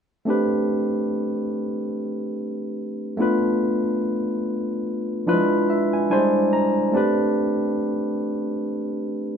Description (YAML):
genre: R&B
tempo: 72 BPM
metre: 4/4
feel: swing 57% on 16ths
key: A minor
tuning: A4 = 441 Hz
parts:
  - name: barky tine electric piano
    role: solo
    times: 0.3-9.4 s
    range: F3 to Bb5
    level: -20 LUFS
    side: equal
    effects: overdrive
room: moderate studio reverb, RT60 0.5 s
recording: band playing live in one room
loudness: -20 LUFS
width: side -7 dB against mid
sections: 0.3-9.4 A section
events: tine electric piano fill 5.3-6.9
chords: 0.3 Am11; 3.2 Bm7b5; 5.3 E7b9; 6.1 E7alt; 6.9 Am11